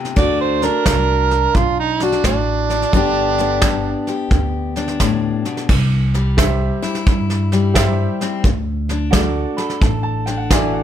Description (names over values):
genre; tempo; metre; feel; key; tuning
honky-tonk and classic country; 87 BPM; 4/4; swing 66% on 8ths; C lydian from 5.7 s; A4 = 440 Hz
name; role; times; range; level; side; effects
picked steel-string acoustic guitar; accompaniment; 0.0-10.8 s; G2 to A4; -21 LUFS; left 6 dB; none
soft brush drum kit; drums; 0.0-10.7 s; crash cymbal, hi-hat, kick drum, snare drum; -18 LUFS; equal; none
overdriven harmonica; second line; 0.2-4.3 s; D4 to D5; -18 LUFS; right 6 dB; none
upright bass; bass; 0.2-10.8 s; G1 to G2; -20 LUFS; equal; none
clear baby grand piano; accompaniment; 6.4-10.8 s; F#4 to B5; -23 LUFS; right 6 dB; none
room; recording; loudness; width
little or no reverb; none; -15 LUFS; side -10 dB against mid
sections
0.0-5.7 A section; 5.7-10.8 B section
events
grand piano fill 9.1-10.8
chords
0.2 D; 2.9 G; 5.7 C; 8.4 D